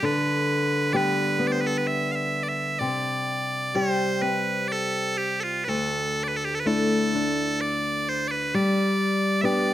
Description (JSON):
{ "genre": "celtic folk, Celtic slow air", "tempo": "64 BPM", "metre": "3/4", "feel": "uneven beats, rubato", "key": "unclear", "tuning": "A4 = 439 Hz", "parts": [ { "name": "loud bright bagpipes", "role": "melody", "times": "0.0-9.7 s", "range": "F4 to F5", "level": "-25 LUFS", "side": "right 2 dB", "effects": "none" }, { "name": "nylon-string guitar", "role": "accompaniment", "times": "0.0-9.7 s", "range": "D2 to G4", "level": "-25 LUFS", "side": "left 2 dB", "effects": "none" } ], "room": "light reverb", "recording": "close, detailed microphones", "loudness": "-22 LUFS", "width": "side -13 dB against mid", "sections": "0.0-9.7 A section", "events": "none", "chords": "0.0 G/D; 2.8 C5; 5.7 Dsus2; 8.5 G", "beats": "| 0.03 0.94 1.86 | 2.79 3.74 4.70 | 5.67 6.64 7.59 | 8.53 9.45" }